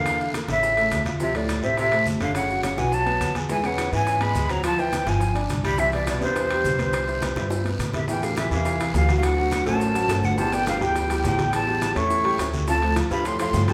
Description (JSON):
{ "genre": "Afro-Cuban jazz", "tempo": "209 BPM", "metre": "4/4", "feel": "straight", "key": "C major, A minor from 8.1 s", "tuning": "A4 = 440 Hz", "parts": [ { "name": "breathy jazz flute", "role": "melody", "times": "0.0-13.7 s", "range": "C5 to C#6", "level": "-27 LUFS", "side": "equal", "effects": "none" }, { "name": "warm baritone saxophone", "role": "second line", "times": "0.0-13.7 s", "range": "C2 to G#3", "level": "-32 LUFS", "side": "equal", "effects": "none" }, { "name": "dark concert grand piano", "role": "accompaniment", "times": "0.0-13.7 s", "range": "E3 to Ab5", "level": "-31 LUFS", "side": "equal", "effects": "none" }, { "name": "upright bass", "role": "bass", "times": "0.0-13.7 s", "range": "F#1 to A2", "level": "-30 LUFS", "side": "equal", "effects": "none" }, { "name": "bongos", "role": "percussion", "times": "0.1-13.7 s", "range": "none", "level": "-39 LUFS", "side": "equal", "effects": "none" }, { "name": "congas", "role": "percussion", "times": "0.1-13.7 s", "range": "none", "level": "-35 LUFS", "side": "equal", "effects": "none" }, { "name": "guiro", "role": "percussion", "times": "0.1-13.7 s", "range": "none", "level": "-42 LUFS", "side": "equal", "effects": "none" }, { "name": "maracas", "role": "percussion", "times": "0.1-13.7 s", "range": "none", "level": "-45 LUFS", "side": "equal", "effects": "none" }, { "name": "timbales", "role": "percussion", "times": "0.1-13.7 s", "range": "none", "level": "-37 LUFS", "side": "equal", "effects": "none" } ], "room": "wet large studio reverb, RT60 1.3 s", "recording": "band playing live in one room", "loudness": "-23 LUFS", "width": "mono", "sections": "0.0-8.1 A section; 8.1-13.7 B section", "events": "drum fill 7.2-8.1", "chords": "0.1 Bbmaj7#11; 0.6 A; 1.2 Dm9; 2.3 F#5; 2.9 B5; 3.5 E6; 4.6 Dm9; 5.2 G5; 5.8 Cmaj7; 8.1 Am7; 9.2 D7; 10.4 G69; 11.5 A7; 12.7 Dm7" }